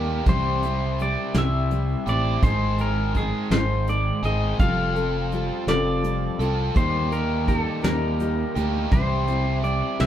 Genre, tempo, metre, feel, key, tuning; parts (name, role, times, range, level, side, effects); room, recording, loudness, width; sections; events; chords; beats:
folk rock and heartland rock; 56 BPM (dotted quarters); 6/8; straight; A4 = 443 Hz
pedal steel guitar; melody; 0.0-10.1 s; Ab4 to F5; -28 LUFS; left 1 dB
picked steel-string acoustic guitar; accompaniment; 0.0-10.1 s; C3 to C5; -30 LUFS; left 4 dB
biting overdriven guitar; riff; 0.0-10.1 s; Ab2 to A4; -28 LUFS; right 1 dB
fingered electric bass; bass; 0.0-10.1 s; F1 to Eb2; -25 LUFS; right 1 dB
soft brush drum kit; drums; 0.3-10.1 s; hi-hat, kick drum, snare drum; -22 LUFS; equal
moderate small room ambience, RT60 0.5 s; band playing live in one room; -20 LUFS; side -10 dB against mid
0.0-10.1 A section
0.3 C; 2.4 Ab; 4.6 Fadd9; 6.8 Eb; 8.9 C
| 0.27 1.35 | 2.43 3.52 | 4.60 5.68 | 6.76 7.84 | 8.93 10.01